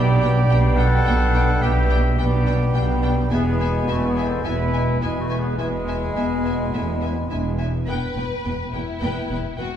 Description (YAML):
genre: cinematic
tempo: 106 BPM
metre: 4/4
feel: straight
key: unclear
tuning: A4 = 437 Hz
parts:
  - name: rich symphonic violin section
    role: melody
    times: 0.0-9.7 s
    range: G5 to G#5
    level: -36 LUFS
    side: left 4 dB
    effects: none
  - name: mellow cor anglais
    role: second line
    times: 0.0-7.6 s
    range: G5 to G#5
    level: -33 LUFS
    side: right 4 dB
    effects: none
  - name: mellow hollow silver concert flute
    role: second line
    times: 0.0-7.6 s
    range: B5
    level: -33 LUFS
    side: left 1 dB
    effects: none
  - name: warm clarinet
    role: second line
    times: 0.0-7.6 s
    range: E4 to F#5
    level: -29 LUFS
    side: left 2 dB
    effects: none
  - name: clear trombone section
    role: sustained chords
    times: 0.0-7.6 s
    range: B2 to G#3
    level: -31 LUFS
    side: right 2 dB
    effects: none
  - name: dark French horn section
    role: sustained chords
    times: 0.0-7.9 s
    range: A3 to B4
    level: -29 LUFS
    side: left 2 dB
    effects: none
  - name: brilliant trumpet section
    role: stabs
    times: 0.0-7.6 s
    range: G#3 to A4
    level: -30 LUFS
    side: equal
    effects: none
  - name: rich symphonic cello section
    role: bass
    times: 0.0-9.7 s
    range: E2 to B2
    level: -26 LUFS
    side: right 1 dB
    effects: none
  - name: rich symphonic double bass section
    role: bass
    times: 0.0-9.7 s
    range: E1 to B1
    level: -22 LUFS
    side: equal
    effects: none
  - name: rich symphonic violin section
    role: second line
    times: 0.2-9.8 s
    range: E4 to G5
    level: -34 LUFS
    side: left 3 dB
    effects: none
  - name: rich symphonic viola section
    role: accompaniment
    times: 0.2-9.7 s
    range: B3 to B4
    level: -34 LUFS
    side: right 1 dB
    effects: none
room: wet recital hall reverb, RT60 1.6 s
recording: heard from further back in the room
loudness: -18 LUFS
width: side -10 dB against mid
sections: 0.0-7.9 A section; 7.9-9.8 B section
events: none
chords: 0.0 G/B; 3.3 E; 7.9 Em